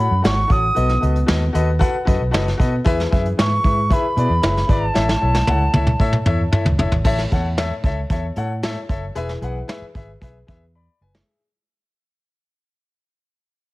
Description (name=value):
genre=uptempo 1960s-style soul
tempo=114 BPM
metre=4/4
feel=straight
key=A major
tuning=A4 = 443 Hz
part: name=concert flute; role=melody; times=0.0-6.5 s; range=A5 to D#6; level=-21 LUFS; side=right 1 dB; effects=none
part: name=clear concert grand piano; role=accompaniment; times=0.0-11.4 s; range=A2 to B5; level=-24 LUFS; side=left 3 dB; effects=none
part: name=vintage muted fingered electric bass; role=bass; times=0.0-11.2 s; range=E1 to B2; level=-20 LUFS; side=equal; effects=none
part: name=vintage brush drum kit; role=drums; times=0.2-11.3 s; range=crash cymbal, hi-hat, kick drum, snare drum, toms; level=-20 LUFS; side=equal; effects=none
room=light reverb, small room ambience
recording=heavily compressed radio sound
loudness=-16 LUFS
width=side -20 dB against mid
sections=0.0-7.0 A section; 7.0-11.3 B section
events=drum fill 4.9-7.0, 10.8-11.3; fade-out 7.0-11.3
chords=0.0 F#m; 0.8 B7; 2.9 E; 4.9 A; 9.2 E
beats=0.24 | 0.76 1.29 1.81 2.33 | 2.85 3.38 3.90 4.42 | 4.95 5.47 6.00 6.52 | 7.05 7.58 8.11 8.63 | 9.16 9.69 10.22 10.75